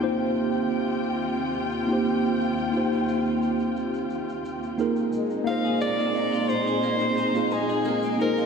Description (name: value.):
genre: sunset chillout.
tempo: 88 BPM.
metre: 4/4.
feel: straight.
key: unclear.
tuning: A4 = 440 Hz.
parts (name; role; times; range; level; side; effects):
tine electric piano; accompaniment; 0.0-8.5 s; Bb3 to C5; -26 LUFS; moving between left 2 dB and right 4 dB; medium stereo tremolo, auto-pan, low-pass filter, tape echo.
dark studio string section; sustained chords; 0.0-8.5 s; Eb2 to G5; -27 LUFS; equal; low-pass filter.
shaker; drums; 0.0-8.5 s; none; -60 LUFS; equal; none.
clear soprano saxophone; melody; 5.5-8.5 s; Ab4 to F5; -26 LUFS; right 1 dB; analog delay.
clean electric guitar; arpeggios; 5.5-8.5 s; Bb3 to Ab4; -32 LUFS; left 1 dB; analog chorus, tape echo.
room: wet lush hall reverb, RT60 1.7 s, small room ambience.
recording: dreamy mix soaked in reverb.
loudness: -23 LUFS.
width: side -6 dB against mid.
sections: 0.0-8.5 A section.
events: filter sweep on tine electric piano 0.0-8.5; filter sweep on string section 0.0-8.5.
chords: 0.0 Eb69; 5.1 Bb9sus4.